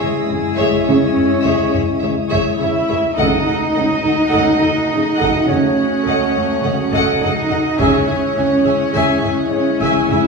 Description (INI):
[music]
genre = cinematic, suspense film score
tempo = 52 BPM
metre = 4/4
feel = straight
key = C# minor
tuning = A4 = 440 Hz
[part]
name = warm chamber violin section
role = melody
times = 0.0-10.2 s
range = E5 to G#5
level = -23 LUFS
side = right 1 dB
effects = none
[part]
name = bright clarinet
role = second line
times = 0.0-10.3 s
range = G#4 to E5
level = -26 LUFS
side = equal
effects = none
[part]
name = warm symphonic violin section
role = second line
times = 0.0-10.3 s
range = G#4 to E5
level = -25 LUFS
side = left 1 dB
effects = none
[part]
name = dark symphonic viola section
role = accompaniment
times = 0.0-10.2 s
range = G#4 to E5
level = -22 LUFS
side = equal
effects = none
[part]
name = dark French horn section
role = sustained chords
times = 0.0-10.3 s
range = G#3 to F#4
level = -22 LUFS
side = left 5 dB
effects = none
[part]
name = warm symphonic cello section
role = riff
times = 0.0-10.3 s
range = C#3 to C#4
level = -24 LUFS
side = right 2 dB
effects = none
[part]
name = dark symphonic double bass section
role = bass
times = 0.0-10.2 s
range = C#2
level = -25 LUFS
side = equal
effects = none
[part]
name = warm studio cello section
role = bass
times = 0.0-10.3 s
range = G#3 to E4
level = -19 LUFS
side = right 2 dB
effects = none
[part]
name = concert harp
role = texture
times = 0.0-5.4 s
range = D#6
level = -38 LUFS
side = right 1 dB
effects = none
[part]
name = warm symphonic violin section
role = texture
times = 0.0-10.3 s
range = D#6 to A#6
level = -34 LUFS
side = left 1 dB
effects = none
[part]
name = taiko ensemble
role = drums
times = 0.3-10.3 s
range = none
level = -29 LUFS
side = left 2 dB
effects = none
[sound]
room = wet recital hall reverb, RT60 1.5 s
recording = recorded in a church or concert hall, studio ambience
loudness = -14 LUFS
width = side -4 dB against mid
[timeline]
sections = 0.0-10.3 A section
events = none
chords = 0.0 C#m; 3.2 D#dim/C#; 7.8 C#m